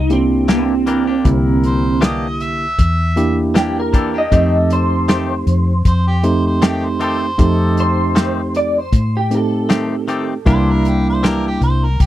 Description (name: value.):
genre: straight-eighth soul blues.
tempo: 78 BPM.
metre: 4/4.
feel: swing 56% on 16ths.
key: C mixolydian.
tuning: A4 = 441 Hz.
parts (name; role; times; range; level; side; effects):
electric guitar through a small old amp; melody; 0.0-10.8 s; C4 to Eb5; -19 LUFS; right 1 dB; analog chorus.
vintage muted fingered electric bass; bass; 0.0-12.1 s; C2 to A2; -18 LUFS; left 1 dB; none.
tine electric piano; accompaniment; 0.1-11.9 s; D3 to G4; -19 LUFS; right 2 dB; medium stereo tremolo.
warm soul drum kit; drums; 0.1-12.1 s; hi-hat, kick drum, snare drum; -15 LUFS; equal; none.
direct-recorded clean electric guitar; stabs; 0.5-11.5 s; Eb3 to G4; -23 LUFS; left 5 dB; none.
mellow horn section; sustained chords; 0.9-11.2 s; Bb3 to Bb4; -27 LUFS; left 3 dB; none.
mellow harmonica; second line; 1.7-12.1 s; G4 to E5; -22 LUFS; right 1 dB; overdrive.
room: small room ambience.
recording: none.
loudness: -13 LUFS.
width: side -13 dB against mid.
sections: 0.0-12.1 A section.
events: none.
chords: 0.0 C9; 4.3 F9; 10.5 C9.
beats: 0.49 | 1.25 2.02 2.79 3.56 | 4.32 5.09 5.86 6.63 | 7.39 8.16 8.93 9.70 | 10.46 11.23 12.00.